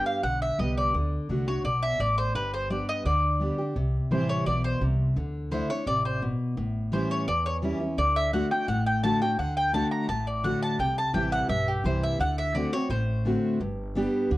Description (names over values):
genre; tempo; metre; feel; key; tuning
bluegrass; 170 BPM; 4/4; straight; unclear; A4 = 439 Hz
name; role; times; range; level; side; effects
mandolin; melody; 0.0-13.6 s; G4 to Bb5; -28 LUFS; equal; plate reverb
picked steel-string acoustic guitar; accompaniment; 0.0-14.4 s; E2 to G4; -28 LUFS; equal; none
upright bass; bass; 0.2-14.4 s; G1 to E2; -30 LUFS; equal; none
room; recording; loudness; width
moderate small room reverb, RT60 0.5 s; worn, warbling old tape, cassette tape, warbly pitch drift; -24 LUFS; side -17 dB against mid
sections
0.0-3.8 A section; 3.8-14.4 B section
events
none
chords
0.0 G; 0.9 D; 2.4 G; 3.8 C; 5.2 Dsus2; 6.6 A7; 8.0 D; 10.8 C; 12.2 D7; 13.6 G